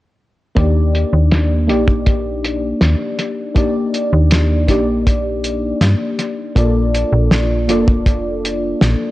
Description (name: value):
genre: vaporwave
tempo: 80 BPM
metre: 4/4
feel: straight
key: unclear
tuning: A4 = 440 Hz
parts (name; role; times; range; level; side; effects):
- mellow FM electric piano; accompaniment; 0.6-9.1 s; Bb3 to D5; -18 LUFS; left 1 dB; analog chorus, analog delay
- slap-like FM bass; bass; 0.6-9.0 s; F1 to G2; -16 LUFS; equal; none
- cloth-damped thuddy drum kit; drums; 0.6-9.0 s; hi-hat, snare drum; -19 LUFS; equal; low-pass filter on hats, low-pass filter on snare, low-pass filter on room, analog delay
- kick drum; drums; 0.6-8.2 s; none; -14 LUFS; equal; none
room: light reverb, small room ambience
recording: echo-heavy mix, cassette tape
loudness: -13 LUFS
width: side -17 dB against mid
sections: 0.6-9.1 A section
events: none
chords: 0.6 Ebmaj7; 6.6 Bbmaj7